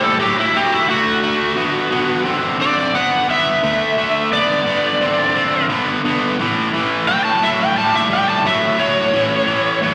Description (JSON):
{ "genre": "rock", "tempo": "87 BPM", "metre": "4/4", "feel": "straight", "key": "unclear", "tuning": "A4 = 442 Hz", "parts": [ { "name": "overdriven slide guitar", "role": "melody", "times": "0.0-9.9 s", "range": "E4 to A5", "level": "-19 LUFS", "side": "equal", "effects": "slapback echo" }, { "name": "overdriven electric guitar", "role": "riff", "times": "0.0-9.9 s", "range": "A2 to C4", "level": "-20 LUFS", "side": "equal", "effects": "slapback echo" } ], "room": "light reverb, digital ambience", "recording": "live gig heard through the venue's PA, recital hall reverb", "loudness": "-17 LUFS", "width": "mono", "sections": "0.0-9.9 A section", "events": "electric slide guitar solo 0.0-9.9", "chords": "0.0 A5; 0.9 D7; 6.4 A7" }